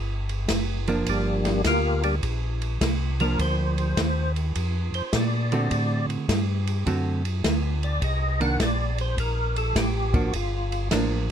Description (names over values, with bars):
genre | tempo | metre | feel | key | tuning
soul jazz organ trio | 104 BPM | 4/4 | swing 66% on 8ths | unclear | A4 = 440 Hz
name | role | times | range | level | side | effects
mellow tonewheel organ | bass | 0.0-11.3 s | F#1 to Bb2 | -26 LUFS | left 1 dB | slow rotary speaker
open jazz drum kit | drums | 0.3-11.1 s | hi-hat, kick drum, ride cymbal, snare drum | -28 LUFS | right 1 dB | none
hollow-body jazz guitar | accompaniment | 0.9-11.3 s | D3 to F#4 | -26 LUFS | right 3 dB | none
percussive tonewheel organ | melody | 1.1-10.9 s | G3 to F#5 | -28 LUFS | left 1 dB | slow rotary speaker, chorus vibrato
room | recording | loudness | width
little or no reverb | close, detailed microphones | -22 LUFS | side -8 dB against mid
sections
0.0-11.3 A section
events
tonewheel organ solo 0.0-11.3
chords
0.0 C7sus2 (rootless); 1.1 Gm7; 5.7 D7; 8.0 Cm9; 10.3 Gm7